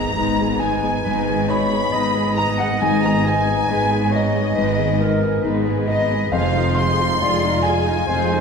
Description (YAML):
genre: cinematic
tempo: 68 BPM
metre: 4/4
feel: rubato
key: G# minor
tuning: A4 = 441 Hz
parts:
  - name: rich symphonic violin section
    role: melody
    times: 0.0-8.4 s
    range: D#5 to C6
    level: -29 LUFS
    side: left 3 dB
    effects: none
  - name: dark studio violin section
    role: second line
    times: 0.0-8.4 s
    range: D#5 to C6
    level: -28 LUFS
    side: left 2 dB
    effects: none
  - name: silver concert flute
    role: second line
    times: 0.0-8.4 s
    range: D#5 to C6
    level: -26 LUFS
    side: left 1 dB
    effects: none
  - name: dark baby grand piano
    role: accompaniment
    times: 0.0-8.4 s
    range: F1 to C6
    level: -23 LUFS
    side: left 3 dB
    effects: none
  - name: warm studio viola section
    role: accompaniment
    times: 0.0-8.4 s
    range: G#3 to G#4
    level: -28 LUFS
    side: right 3 dB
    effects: none
  - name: dark French horn section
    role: sustained chords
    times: 0.0-8.4 s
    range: Ab3 to D#4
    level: -28 LUFS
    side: left 3 dB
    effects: none
  - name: concert harp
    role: arpeggios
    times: 0.0-8.4 s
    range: G#2 to F5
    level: -29 LUFS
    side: left 9 dB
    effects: none
  - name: rich symphonic cello section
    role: bass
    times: 0.0-8.4 s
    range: F2 to G#2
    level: -26 LUFS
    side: right 3 dB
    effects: none
  - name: warm symphonic double bass section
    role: bass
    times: 0.0-8.4 s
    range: F1 to G#1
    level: -25 LUFS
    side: right 5 dB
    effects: none
  - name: timpani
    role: percussion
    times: 0.0-0.6 s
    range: none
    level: barely audible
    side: none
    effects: none
  - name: warm clarinet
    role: second line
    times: 1.0-8.4 s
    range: A#4 to D#5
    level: -26 LUFS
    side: left 1 dB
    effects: none
room: moderate scoring stage reverb, RT60 1.5 s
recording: minimal, uncompressed stereo recording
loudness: -16 LUFS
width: side -5 dB against mid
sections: 0.0-8.4 A section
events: none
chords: 0.0 G#m; 6.3 Fm7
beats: 0.16 1.05 1.93 | 2.80 3.69 4.56 5.43 | 6.32 7.22 8.09